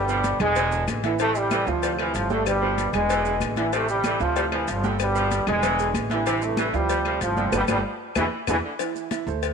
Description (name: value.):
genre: latin, salsa.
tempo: 190 BPM.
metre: 4/4.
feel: straight.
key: A minor.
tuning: A4 = 440 Hz.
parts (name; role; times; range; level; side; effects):
mellow trombone section; melody; 0.0-8.6 s; G2 to A3; -24 LUFS; equal; none.
clear baby grand piano; accompaniment; 0.0-9.5 s; E3 to G#5; -30 LUFS; right 13 dB; none.
upright bass; bass; 0.0-9.5 s; E1 to E2; -29 LUFS; equal; none.
bright saxophone section; second line; 0.1-8.7 s; C3 to G3; -31 LUFS; right 1 dB; none.
congas; percussion; 0.1-9.5 s; none; -32 LUFS; left 1 dB; none.
maracas; percussion; 0.1-9.5 s; none; -41 LUFS; right 14 dB; none.
cowbell; percussion; 0.2-9.5 s; none; -32 LUFS; left 15 dB; none.
claves; percussion; 0.4-8.5 s; none; -36 LUFS; left 14 dB; none.
room: moderate plate reverb, RT60 2.5 s.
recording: 1960s-style stereo with parts hard left and right.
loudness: -21 LUFS.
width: side -6 dB against mid.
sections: 0.0-8.8 A section.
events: drum fill 7.5-8.8; band accent 7.5-8.8.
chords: 0.0 G; 0.6 E7; 1.2 Am7; 1.8 Dm7; 2.5 G; 3.1 E7; 3.7 Am7; 4.4 Dm7; 5.0 G; 5.6 E7; 6.3 Am7; 6.9 Dm7; 7.5 Gadd9; 8.2 E7; 8.8 Am.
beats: 0.24 0.56 0.88 | 1.19 1.51 1.83 2.14 | 2.46 2.78 3.09 3.41 | 3.73 4.04 4.36 4.68 | 5.00 5.31 5.63 5.95 | 6.26 6.58 6.89 7.21 | 7.53 7.84 8.16 8.48 | 8.79 9.11 9.43.